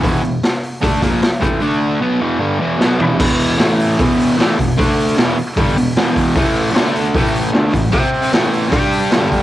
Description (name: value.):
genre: garage rock duo or trio.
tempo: 152 BPM.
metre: 4/4.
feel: straight.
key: unclear.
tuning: A4 = 441 Hz.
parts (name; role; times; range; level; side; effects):
fuzz guitar; riff; 0.0-9.4 s; E2 to G4; -15 LUFS; equal; distortion.
raw garage drum kit; drums; 0.0-9.4 s; crash cymbal, hi-hat, kick drum, snare drum, toms; -17 LUFS; equal; cassette tape.
room: light reverb, small room ambience.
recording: home recording on cassette.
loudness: -13 LUFS.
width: side -14 dB against mid.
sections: 0.0-3.2 A section; 3.2-9.4 B section.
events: drum fill 2.8-3.2.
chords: 0.0 E5; 1.6 D5; 2.0 E5; 3.6 A5; 4.0 E5; 4.8 D5; 5.2 E5; 6.4 A5; 6.8 D5; 7.1 A5; 7.9 C5; 8.3 A5; 8.7 G5.